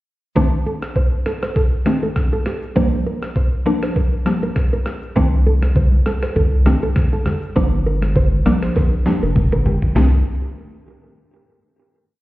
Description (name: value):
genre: afrobeats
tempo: 100 BPM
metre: 4/4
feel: swing 55% on 16ths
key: C dorian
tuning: A4 = 440 Hz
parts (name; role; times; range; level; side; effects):
- mallet-like synth pluck; accompaniment; 0.4-10.2 s; Eb3 to D4; -20 LUFS; left 1 dB; chorus, phaser
- nylon-string guitar; riff; 0.4-10.1 s; G4 to C5; -25 LUFS; right 2 dB; tape echo
- breakbeat sampler-style drum kit; drums; 0.4-10.1 s; hi-hat, kick drum, rim click, shaker, snare drum, toms; -19 LUFS; equal; overdrive
- saturated sub bass; bass; 5.2-10.2 s; F1 to C2; -16 LUFS; equal; none
- congas; percussion; 5.6-10.2 s; none; -24 LUFS; left 1 dB; none
room: little or no reverb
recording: heard muffled through a wall, stone room reverb, EQ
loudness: -15 LUFS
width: side -17 dB against mid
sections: 0.4-10.0 verse; 10.0-12.2 final chord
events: drum fill 8.8-10.0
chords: 0.4 Cm69; 2.8 Gm7; 5.2 Cm69; 7.6 Gm7; 8.5 Bb6; 10.0 Cm69